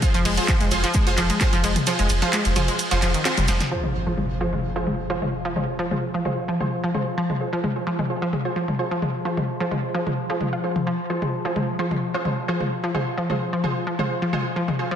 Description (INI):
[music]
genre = driving peak-time techno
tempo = 130 BPM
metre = 4/4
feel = straight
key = F minor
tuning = A4 = 440 Hz
[part]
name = rave stab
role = stabs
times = 0.0-14.9 s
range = F4 to C5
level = -28 LUFS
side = right 2 dB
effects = chorus, built-in reverb, sidechain pumping, ping-pong delay
[part]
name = overtone-sweeping drone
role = drone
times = 0.0-15.0 s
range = F3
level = -31 LUFS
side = left 2 dB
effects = chorus, built-in reverb, sidechain pumping
[part]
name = electronic kick drum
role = drums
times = 0.0-1.5 s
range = none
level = -21 LUFS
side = equal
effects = none
[part]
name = open jazz drum kit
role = drums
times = 0.0-3.6 s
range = hi-hat, shaker, snare drum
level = -35 LUFS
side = equal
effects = none
[part]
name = techno drum kit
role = drums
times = 0.0-14.8 s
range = handclaps, hi-hat, ride cymbal, snare drum, toms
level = -26 LUFS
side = left 1 dB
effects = low-pass filter on hats, low-pass filter on toms, low-pass filter on cymbals, low-pass filter on snare, low-pass filter on room
[part]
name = analog pluck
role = riff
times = 0.1-15.0 s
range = Eb3 to F4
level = -26 LUFS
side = equal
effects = chorus, tube saturation, cassette tape, sidechain pumping, digital delay
[part]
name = warm sub bass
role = bass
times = 0.1-3.6 s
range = F1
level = -24 LUFS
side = equal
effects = tube saturation, sidechain pumping, low-pass filter
[part]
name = impact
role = sound effects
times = 3.7-5.6 s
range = none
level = -31 LUFS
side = equal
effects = none
[sound]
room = moderate digital room reverb, RT60 1.0 s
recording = dense, heavily limited modern master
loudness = -21 LUFS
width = side -9 dB against mid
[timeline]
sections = 0.0-3.7 A section; 3.7-15.0 B section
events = drop 0.0-3.7; kick drops out 1.9-3.7; band accent 3.3; drum fill 3.5; impact 3.7-5.6; filter sweep on drum 3.7-15.0; filter sweep on synth stab 3.7-15.0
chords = 0.0 Fm